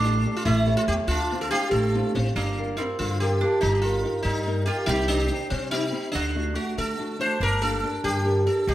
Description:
italian folk; 95 BPM (dotted quarters); 6/8; straight; G minor; A4 = 441 Hz
sitar; melody; 0.0-8.7 s; C4 to C5; -26 LUFS; equal
mandolin; second line; 0.0-8.7 s; Bb3 to G4; -31 LUFS; right 2 dB
nylon-string guitar; accompaniment; 0.0-8.7 s; C3 to C#5; -29 LUFS; equal
upright bass; bass; 0.0-8.7 s; G1 to D3; -27 LUFS; equal
moderate recital hall reverb, RT60 1.3 s; -22 LUFS; side -14 dB against mid
0.0-2.4 A section; 2.4-8.7 B section
0.4 A7; 1.1 Dm7; 2.4 Gm7; 3.6 Eb/G; 4.9 Cm; 6.1 D; 7.4 Gm

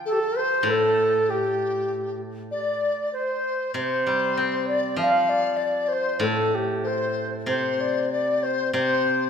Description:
chinese traditional, Chinese chamber ensemble; 97 BPM; 2/4; rubato; A4 = 438 Hz
steel-string zither; accompaniment; 0.0-9.3 s; A2 to C4; -28 LUFS; left 1 dB
bright reedy xiao; melody; 0.1-9.3 s; G4 to F5; -24 LUFS; right 2 dB
reedy large dizi; second line; 0.1-9.3 s; G4 to F5; -27 LUFS; left 7 dB
wet recital hall reverb, RT60 1.7 s; minimal, uncompressed stereo recording; -21 LUFS; side -7 dB against mid
0.0-2.5 A section; 2.5-9.3 B section

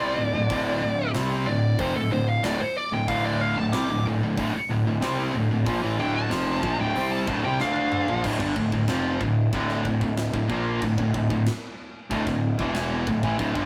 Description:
heavy metal; 93 BPM; 4/4; straight; D minor; A4 = 440 Hz
high-gain lead guitar; melody; 0.0-8.2 s; A4 to D6; -30 LUFS; equal; distortion
distorted electric guitar; riff; 0.0-13.7 s; D2 to D4; -29 LUFS; equal; overdrive
scooped high-gain guitar; riff; 0.0-13.7 s; D2 to D4; -30 LUFS; equal; distortion
fuzz picked electric bass; bass; 0.0-13.7 s; D1 to D2; -31 LUFS; equal; overdrive
tight metal drum kit; drums; 0.5-13.7 s; crash cymbal, hi-hat, kick drum, snare drum, toms; -38 LUFS; equal
wet booth ambience, RT60 0.2 s; rough rehearsal-room recording, tube saturation; -25 LUFS; mono
0.0-8.2 A section; 8.2-13.7 B section
lead electric guitar solo 0.0-8.2; drum fill 7.6-8.2
0.0 Dm

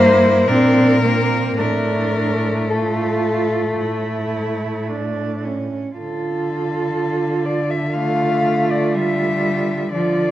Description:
classical, lyrical piece for cello ensemble; 53-62 BPM; 4/4; rubato; D minor; A4 = 440 Hz
rich cello; melody; 0.0-10.3 s; A4 to F5; -21 LUFS; left 3 dB
rich cello; second line; 0.0-10.3 s; C4 to F4; -22 LUFS; right 5 dB
clear cello; accompaniment; 0.0-10.3 s; F3 to C4; -20 LUFS; left 1 dB
warm cello; bass; 0.0-10.3 s; G2 to D3; -24 LUFS; right 1 dB
wet recital hall reverb, RT60 1.8 s; worn, warbling old tape, cassette tape, warbly pitch drift; -16 LUFS; side -13 dB against mid
0.0-6.0 A section; 6.0-10.3 B section
0.0 Edim/G; 1.6 Asus4; 6.0 Dm

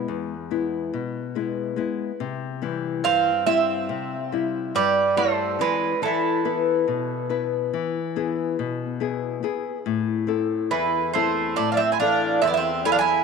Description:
greek folk, Greek bouzouki band; 141 BPM (eighths); 9/8; straight; A4 = 440 Hz
Greek bouzouki; melody; 0.0-13.2 s; A4 to G#5; -23 LUFS; right 10 dB
Greek bouzouki; second line; 0.0-13.2 s; E3 to E4; -26 LUFS; right 1 dB
nylon-string guitar; accompaniment; 0.0-13.2 s; E2 to B4; -25 LUFS; left 8 dB
wet plate reverb, RT60 3.8 s; 1960s-style stereo with parts hard left and right; -21 LUFS; side -5 dB against mid
0.0-2.2 A section; 2.2-13.2 B section
0.0 E; 2.2 C; 6.0 E; 9.9 Am

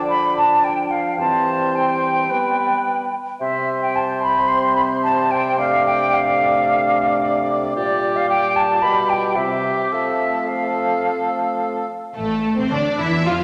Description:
quick classical-period movement for symphony orchestra; 110 BPM; 4/4; straight; F major from 7.8 s; A4 = 440 Hz
warm cor anglais; second line; 0.0-11.9 s; G4 to D5; -25 LUFS; equal
clear bassoon; accompaniment; 0.0-11.8 s; Bb2 to G3; -28 LUFS; equal
mellow French horn section; sustained chords; 0.0-11.8 s; E3 to F4; -30 LUFS; equal
silver concert flute; second line; 0.1-11.9 s; D5 to C6; -22 LUFS; equal
rich studio violin section; melody; 12.2-13.4 s; A4 to F5; -27 LUFS; equal
warm studio violin section; second line; 12.2-13.3 s; A3 to F4; -26 LUFS; equal
clear studio viola section; accompaniment; 12.2-13.4 s; A3 to F4; -27 LUFS; equal
warm studio double bass section; bass; 12.2-13.4 s; A1 to F2; -27 LUFS; equal
warm symphonic cello section; bass; 12.2-13.4 s; A2 to F3; -27 LUFS; equal
wet scoring stage reverb, RT60 1.9 s; -19 LUFS; mono
0.0-12.2 A section; 12.2-13.4 B section
0.0 Dm; 1.2 C/E; 2.3 G; 3.4 C5; 5.6 Dm7/C; 7.8 Gm7/Bb; 8.8 G7/B; 9.4 C; 9.9 F; 12.2 F/A

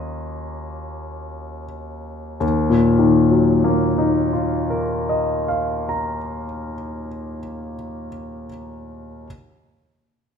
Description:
classical, impressionist solo piano; 40 BPM; 3/4; rubato; Eb minor; A4 = 439 Hz
clear concert grand piano; solo; 0.0-9.3 s; Eb2 to Bb5; -20 LUFS; left 1 dB
moderate recital hall reverb, RT60 1.4 s; minimal, uncompressed stereo recording; -17 LUFS; side -7 dB against mid
0.0-2.4 A section; 2.4-7.0 B section
slowing down 0.0-2.4
0.0 Ebm9; 2.4 Ebmadd9

